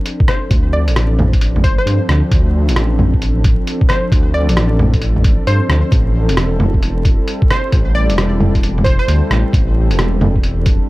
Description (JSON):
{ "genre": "future garage", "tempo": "133 BPM", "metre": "4/4", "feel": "swing 64% on 16ths", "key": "D minor", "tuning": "A4 = 444 Hz", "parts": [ { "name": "warbly tape-like pad", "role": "sustained chords", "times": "0.0-10.9 s", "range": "F3 to A4", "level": "-22 LUFS", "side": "equal", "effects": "chorus, built-in reverb, sidechain pumping" }, { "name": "lo-fi sampler-style drum kit", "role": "drums", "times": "0.1-10.8 s", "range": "bongos, hi-hat, rim click", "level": "-19 LUFS", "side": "equal", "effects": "none" }, { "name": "electronic kick drum", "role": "drums", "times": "0.2-10.8 s", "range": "none", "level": "-14 LUFS", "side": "equal", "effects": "none" }, { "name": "glassy wavetable pluck", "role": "melody", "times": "0.3-9.6 s", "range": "C5 to D5", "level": "-23 LUFS", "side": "equal", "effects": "chorus, tape echo" }, { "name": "dark detuned saw bass", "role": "bass", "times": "0.5-10.8 s", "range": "E1 to G2", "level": "-15 LUFS", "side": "equal", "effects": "tube saturation, sidechain pumping" } ], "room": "digital ambience", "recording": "dark, warm production, vinyl crackle", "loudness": "-12 LUFS", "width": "side -19 dB against mid", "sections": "0.0-10.9 A section", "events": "none", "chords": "0.0 Dm7; 5.9 Am7", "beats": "0.06 | 0.51 0.96 1.41 1.86 | 2.32 2.77 3.22 3.67 | 4.12 4.57 5.02 5.47 | 5.92 6.38 6.83 7.28 | 7.73 8.18 8.63 9.08 | 9.53 9.98 10.44 10.89" }